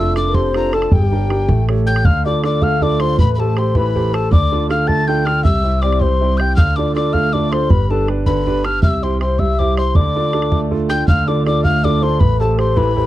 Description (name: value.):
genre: celtic folk, Celtic jig.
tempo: 106 BPM (dotted quarters).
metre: 6/8.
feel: straight.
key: D dorian.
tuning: A4 = 440 Hz.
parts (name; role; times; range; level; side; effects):
mellow hollow tin whistle; melody; 0.0-13.1 s; G5 to A6; -22 LUFS; left 2 dB; none.
baroque flute; second line; 0.0-13.1 s; G4 to A5; -22 LUFS; left 6 dB; none.
clear upright piano; accompaniment; 0.0-13.1 s; C3 to C#5; -20 LUFS; right 5 dB; none.
upright bass; bass; 0.0-13.1 s; F1 to D2; -18 LUFS; equal; none.
bodhran; percussion; 0.2-13.0 s; none; -17 LUFS; right 1 dB; none.
room: small room ambience.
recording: dry, close 1970s-style studio recording.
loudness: -13 LUFS.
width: side -14 dB against mid.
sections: 0.0-2.0 A section; 2.0-11.1 B section; 11.1-13.1 B section.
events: none.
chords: 0.0 F6; 0.9 Gm; 1.5 A7; 2.0 Dm; 3.2 Am7; 4.3 Dm; 5.4 C; 6.6 Dm; 7.7 G; 8.8 C; 10.0 Dm; 12.2 Am7.